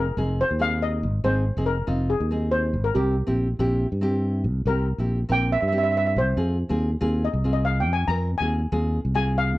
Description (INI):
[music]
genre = calypso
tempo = 140 BPM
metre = 4/4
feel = swing 54% on 16ths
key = Ab major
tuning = A4 = 440 Hz
[part]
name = steel pan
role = melody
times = 0.0-9.6 s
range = G4 to Bb5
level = -25 LUFS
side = left 1 dB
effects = none
[part]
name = nylon-string guitar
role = accompaniment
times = 0.0-9.5 s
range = C4 to Bb4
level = -28 LUFS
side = equal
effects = none
[part]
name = fingered electric bass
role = bass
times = 0.0-9.6 s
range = F1 to G2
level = -24 LUFS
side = equal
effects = none
[sound]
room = moderate small room reverb, RT60 0.5 s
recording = worn, warbling old tape, cassette tape, warbly pitch drift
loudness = -21 LUFS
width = side -17 dB against mid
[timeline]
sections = 0.0-9.6 A section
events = steel pan solo 0.0-9.6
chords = 0.0 Abadd9; 3.0 C7; 6.4 Fm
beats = 0.38 0.81 | 1.24 1.67 2.10 2.52 | 2.95 3.38 3.81 4.24 | 4.67 5.09 5.52 5.95 | 6.38 6.81 7.24 7.66 | 8.09 8.52 8.95 9.38